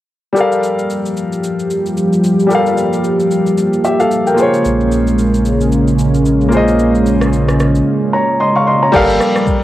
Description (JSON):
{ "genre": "amapiano", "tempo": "112 BPM", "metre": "4/4", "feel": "swing 58% on 16ths", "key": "unclear", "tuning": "A4 = 441 Hz", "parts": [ { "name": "warm baby grand piano", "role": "accompaniment", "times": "0.3-9.6 s", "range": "G3 to Db6", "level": "-15 LUFS", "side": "left 1 dB", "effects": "cassette tape" }, { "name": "warm analog pad", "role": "sustained chords", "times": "0.4-9.6 s", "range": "Db3 to G4", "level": "-14 LUFS", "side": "right 1 dB", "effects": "chorus, sidechain pumping, cassette tape" }, { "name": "smooth R&B drum kit", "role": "drums", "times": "0.4-9.6 s", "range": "crash cymbal, kick drum, rim click, shaker", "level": "-24 LUFS", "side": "equal", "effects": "cassette tape" }, { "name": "sub bass with octave", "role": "bass", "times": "4.6-9.2 s", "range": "G1 to Bb1", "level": "-18 LUFS", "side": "equal", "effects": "none" } ], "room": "light reverb, digital ambience", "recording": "home recording on cassette", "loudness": "-11 LUFS", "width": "side -14 dB against mid", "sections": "0.4-8.9 A section", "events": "none", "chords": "0.4 Gm9; 4.4 Bbm9; 8.9 Gm9" }